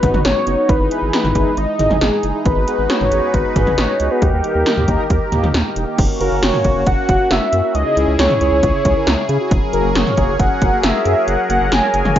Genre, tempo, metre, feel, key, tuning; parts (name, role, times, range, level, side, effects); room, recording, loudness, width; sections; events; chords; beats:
synth-pop; 136 BPM; 4/4; straight; A4 = 440 Hz
wide unison lead; melody; 0.0-12.2 s; G4 to G#5; -18 LUFS; equal; slapback echo
mellow synth brass; accompaniment; 0.0-12.1 s; A#3 to B4; -24 LUFS; left 1 dB; chorus, tremolo
phased analog pad; sustained chords; 0.0-12.2 s; C#3 to B4; -21 LUFS; equal; phaser, chorus
round analog bass; bass; 0.0-12.2 s; E1 to C#3; -20 LUFS; equal
80s electronic pad drums; drums; 0.0-12.2 s; crash cymbal, hi-hat, kick drum, snare drum, toms; -18 LUFS; equal; gated reverb on snare and toms
moderate digital room reverb, RT60 1.0 s; rough home demo mix, nothing above 7.5 kHz; -13 LUFS; side -11 dB against mid
0.0-6.0 A section; 6.0-12.2 B section
0.0 B/G#; 0.7 Emaj7/G#; 2.5 G#m7; 4.2 D#; 6.0 F#; 7.7 C#m; 9.5 F#add9
0.25 | 0.69 1.13 1.57 2.01 | 2.45 2.90 3.34 3.78 | 4.22 4.66 5.10 5.54 | 5.98 6.42 6.87 7.31 | 7.75 8.19 8.63 9.07 | 9.51 9.95 10.40 10.84 | 11.28 11.72 12.16